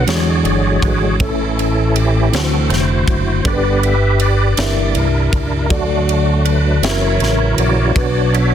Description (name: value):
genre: slow gospel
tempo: 53 BPM (dotted quarters)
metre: 6/8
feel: straight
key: D major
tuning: A4 = 440 Hz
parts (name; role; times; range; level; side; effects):
- mellow tine electric piano; accompaniment; 0.0-8.5 s; G2 to E5; -18 LUFS; left 2 dB; medium stereo tremolo
- bright tonewheel organ; sustained chords; 0.0-8.5 s; C#3 to E5; -19 LUFS; right 4 dB; slow rotary speaker, chorus vibrato
- fingered electric bass; bass; 0.0-8.5 s; F1 to E2; -17 LUFS; equal; none
- crisp fusion drum kit; drums; 0.1-8.5 s; kick drum, ride cymbal, snare drum; -21 LUFS; equal; none
room: light reverb, small room ambience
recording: dense, heavily limited modern master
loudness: -13 LUFS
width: side -9 dB against mid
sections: 0.0-8.5 A section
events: tonewheel organ solo 0.0-8.5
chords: 0.1 E13; 1.2 A; 2.3 D9; 3.5 G; 4.6 Gm6; 5.7 D; 6.8 F#7; 8.0 Bm